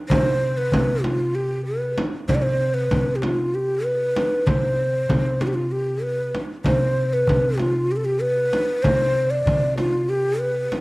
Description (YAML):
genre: Turkish makam ensemble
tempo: 192 BPM (eighths)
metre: 7/8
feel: straight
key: unclear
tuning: A4 = 440 Hz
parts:
  - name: breathy mellow ney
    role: melody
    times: 0.1-10.8 s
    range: F4 to D5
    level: -22 LUFS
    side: equal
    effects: cassette tape
  - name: upright bass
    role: bass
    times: 0.1-10.7 s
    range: C3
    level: -25 LUFS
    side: equal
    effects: none
  - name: darbuka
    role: percussion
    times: 0.1-10.8 s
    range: none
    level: -26 LUFS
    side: equal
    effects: none
  - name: frame drum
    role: percussion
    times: 0.1-10.8 s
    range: none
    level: -25 LUFS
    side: equal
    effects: none
room: moderate spring reverb, RT60 1.6 s, small room ambience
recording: home recording on cassette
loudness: -19 LUFS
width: side -22 dB against mid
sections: 0.0-10.8 A section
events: none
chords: none